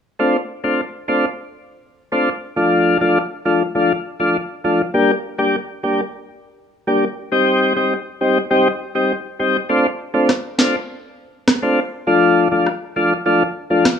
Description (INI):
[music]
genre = dancehall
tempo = 101 BPM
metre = 4/4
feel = straight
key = unclear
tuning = A4 = 439 Hz
[part]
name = tonewheel organ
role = accompaniment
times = 0.2-13.9 s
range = F3 to G4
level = -16 LUFS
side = left 1 dB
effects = slow rotary speaker
[part]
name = electronic rim click and snare drum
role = drums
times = 10.3-14.0 s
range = none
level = -17 LUFS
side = right 1 dB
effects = overdrive
[sound]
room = moderate plate reverb, RT60 1.9 s, digital ambience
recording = worn, warbling old tape, cassette tape, warbly pitch drift, small room ambience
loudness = -16 LUFS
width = side -7 dB against mid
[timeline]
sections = 0.2-14.0 A section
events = none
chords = 0.2 F6; 2.6 Dm; 4.9 Gm; 7.3 Cm; 9.7 F6; 12.1 Dm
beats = | 0.19 0.79 1.38 1.97 | 2.57 3.16 3.75 4.35 | 4.94 5.54 6.13 6.72 | 7.32 7.91 8.51 9.10 | 9.70 10.29 10.88 11.48 | 12.07 12.67 13.26 13.85